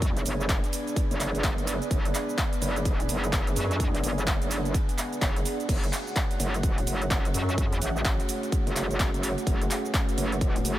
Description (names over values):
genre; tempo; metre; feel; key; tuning
bass house; 127 BPM; 4/4; swing 62% on 16ths; F# minor; A4 = 439 Hz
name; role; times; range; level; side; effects
dark analog pad; sustained chords; 0.0-10.8 s; A3 to D5; -34 LUFS; equal; chorus, sidechain pumping
metallic wobble bass; bass; 0.0-10.8 s; F#1 to F#2; -29 LUFS; equal; chorus, overdrive, sidechain pumping
big-room dance drum kit; drums; 0.0-10.8 s; crash cymbal, handclaps, hi-hat, shaker; -32 LUFS; equal; none
electronic kick drum; drums; 0.0-10.5 s; none; -27 LUFS; equal; none
deep dark ambient pad; texture; 0.2-10.8 s; A3 to G#5; -35 LUFS; right 2 dB; chorus, built-in reverb, sidechain pumping
room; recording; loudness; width
moderate huge ambient reverb, RT60 7.3 s; dreamy mix soaked in reverb; -24 LUFS; side -14 dB against mid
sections
0.0-10.8 A section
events
none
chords
0.0 G#dim/F#; 5.7 F#madd9